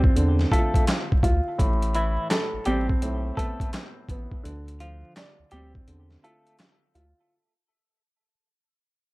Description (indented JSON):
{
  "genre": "hip hop, boom-bap hip-hop",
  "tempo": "84 BPM",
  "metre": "4/4",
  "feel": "swing 63% on 16ths",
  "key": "unclear",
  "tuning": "A4 = 439 Hz",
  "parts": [
    { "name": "warm upright piano", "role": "accompaniment", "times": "0.0-7.3 s", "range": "A2 to D5", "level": "-29 LUFS", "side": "right 1 dB", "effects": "cassette tape, high-pass filter, low-pass filter, plate reverb" },
    { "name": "round analog bass", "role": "bass", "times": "0.0-7.1 s", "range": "A1 to E2", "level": "-26 LUFS", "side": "equal", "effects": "none" },
    { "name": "boom bap sampler-style drum kit", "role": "drums", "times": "0.0-7.2 s", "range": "handclaps, hi-hat, kick drum, snare drum", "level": "-23 LUFS", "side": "equal", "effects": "none" },
    { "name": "semi-hollow electric guitar", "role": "melody", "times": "0.5-6.6 s", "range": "E3 to A4", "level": "-31 LUFS", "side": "equal", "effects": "tremolo, high-pass filter, low-pass filter, plate reverb, ping-pong delay" }
  ],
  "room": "light reverb",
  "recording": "vinyl crackle",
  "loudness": "-21 LUFS",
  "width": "side -22 dB against mid",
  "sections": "0.0-7.3 A section",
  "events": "fade-out 0.0-7.3; break 5.9-7.3",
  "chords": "0.0 Dm7; 1.6 Amadd9; 4.4 Dm7"
}